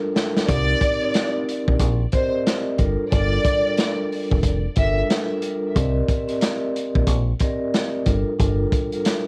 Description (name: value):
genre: hip hop, boom-bap hip-hop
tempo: 91 BPM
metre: 4/4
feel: swing 62% on 16ths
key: C minor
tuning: A4 = 441 Hz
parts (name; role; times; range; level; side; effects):
- vibraphone with medium mallets; accompaniment; 0.0-9.3 s; G3 to Eb5; -27 LUFS; equal; cassette tape
- crunchy breakbeat drum kit; drums; 0.2-9.2 s; hi-hat, kick drum, snare drum; -25 LUFS; equal; cassette tape
- warm studio violin section; melody; 0.5-5.0 s; C5 to E5; -27 LUFS; equal; cassette tape, tape echo
- deep dub fingered electric bass; bass; 0.5-8.6 s; F1 to C2; -24 LUFS; equal; none
room: light reverb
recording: home recording on cassette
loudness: -21 LUFS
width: mono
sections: 0.5-9.3 A section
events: drum fill 0.0-0.5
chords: 0.5 Cm9; 2.8 Gm9; 5.8 Cm9; 8.1 Gm9